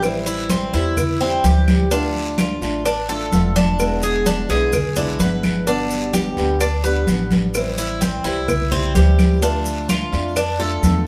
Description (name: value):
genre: latin, Cuban son and guajira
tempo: 128 BPM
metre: 4/4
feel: straight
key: A minor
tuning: A4 = 441 Hz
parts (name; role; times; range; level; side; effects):
- fingerpicked swing-style acoustic guitar; accompaniment; 0.0-11.1 s; B2 to G4; -27 LUFS; equal; none
- Cuban tres; arpeggios; 0.0-11.1 s; C4 to B4; -25 LUFS; equal; none
- upright bass; bass; 0.0-11.1 s; E1 to F2; -24 LUFS; equal; none
- claves; percussion; 0.0-10.6 s; none; -34 LUFS; equal; none
- congas; percussion; 0.0-11.1 s; none; -24 LUFS; equal; none
- cowbell; percussion; 0.0-11.1 s; none; -29 LUFS; equal; none
- guiro; percussion; 0.0-11.1 s; none; -36 LUFS; equal; none
- maracas; percussion; 0.0-11.1 s; none; -35 LUFS; equal; none
room: wet studio reverb, RT60 0.6 s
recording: band playing live in one room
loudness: -19 LUFS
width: mono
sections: 0.0-11.1 A section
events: none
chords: 0.0 Am7; 1.9 Dm; 3.8 E7; 5.7 G; 7.5 Am7; 9.4 Dm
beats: | 0.03 0.50 0.97 1.44 | 1.91 2.38 2.85 3.32 | 3.79 4.26 4.73 5.20 | 5.67 6.14 6.61 7.08 | 7.55 8.02 8.49 8.96 | 9.43 9.89 10.36 10.83